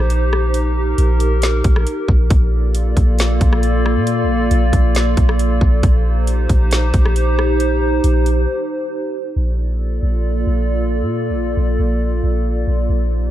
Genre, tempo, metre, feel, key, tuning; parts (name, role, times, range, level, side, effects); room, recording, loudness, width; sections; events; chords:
hip hop, atmospheric cloud-rap; 136 BPM; 4/4; half-time; Bb major; A4 = 439 Hz
warbly tape-like pad; sustained chords; 0.0-13.3 s; Bb3 to D5; -20 LUFS; equal; chorus, built-in reverb, sidechain pumping
soft 808-style bass; bass; 0.0-13.3 s; Bb1 to Bb2; -16 LUFS; equal
trap drum kit; drums; 0.0-8.4 s; hi-hat, kick drum, rim click, snare drum; -17 LUFS; equal
little or no reverb; dark, warm production; -14 LUFS; side -13 dB against mid
0.0-9.4 A section; 9.4-13.3 B section
break 8.5-9.4
0.0 Eb6/Bb; 2.3 Bbmaj7; 5.8 Eb6/Bb; 9.4 Bbmaj7